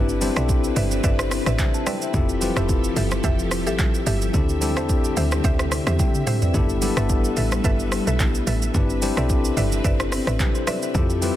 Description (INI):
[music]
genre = amapiano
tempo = 109 BPM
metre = 4/4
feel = swing 55% on 16ths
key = unclear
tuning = A4 = 440 Hz
[part]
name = bell-like tine electric piano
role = accompaniment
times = 0.0-11.4 s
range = B3 to A5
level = -26 LUFS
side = left 5 dB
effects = none
[part]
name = string machine, cellos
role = sustained chords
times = 0.0-11.4 s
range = D3 to E5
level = -30 LUFS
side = equal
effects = ensemble chorus, sidechain pumping
[part]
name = woody log drum bass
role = bass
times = 0.0-11.3 s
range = F1 to F2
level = -24 LUFS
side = equal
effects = none
[part]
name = afro-pop drum kit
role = drums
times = 0.1-11.4 s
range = handclaps, hi-hat, kick drum, rim click, shaker, toms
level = -23 LUFS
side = equal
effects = none
[part]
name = congas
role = percussion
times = 0.2-11.4 s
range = none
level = -33 LUFS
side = right 3 dB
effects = none
[part]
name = mallet-like synth pluck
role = stabs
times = 0.4-10.8 s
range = G4 to E5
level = -31 LUFS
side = right 3 dB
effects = chorus, digital delay
[sound]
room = little or no reverb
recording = dense, heavily limited modern master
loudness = -19 LUFS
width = side -13 dB against mid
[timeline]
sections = 0.0-11.4 A section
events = tine electric piano fill 5.7-6.5; drum fill 6.0-6.5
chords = 0.0 Cmaj9/G; 2.1 Fmaj9; 4.3 D9sus4; 6.5 G69; 8.7 Cmaj9/G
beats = 0.49 1.04 1.59 | 2.14 2.69 3.24 3.79 | 4.34 4.89 5.44 5.99 | 6.54 7.09 7.64 8.20 | 8.75 9.30 9.85 10.40 | 10.95